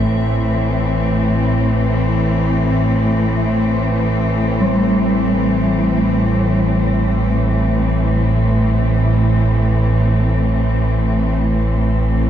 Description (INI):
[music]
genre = dark ambient drone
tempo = free time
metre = none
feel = none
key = A minor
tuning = A4 = 440 Hz
[part]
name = rich symphonic cello section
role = sustained chords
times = 0.0-12.3 s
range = A2 to C4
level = -17 LUFS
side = left 1 dB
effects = none
[part]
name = deep rumbling drone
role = drone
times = 0.0-12.3 s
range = A1 to A2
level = -18 LUFS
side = right 1 dB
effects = built-in reverb, phaser
[part]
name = gamelan-type bronze metallophone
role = arpeggios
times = 4.6-11.3 s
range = G3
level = -21 LUFS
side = equal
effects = diffuse ambient delay
[sound]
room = wet cathedral reverb, RT60 5.8 s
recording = in a vast, echoing space, cassette tape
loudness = -14 LUFS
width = side -10 dB against mid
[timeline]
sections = 0.1-12.3 A section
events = none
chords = 0.1 Am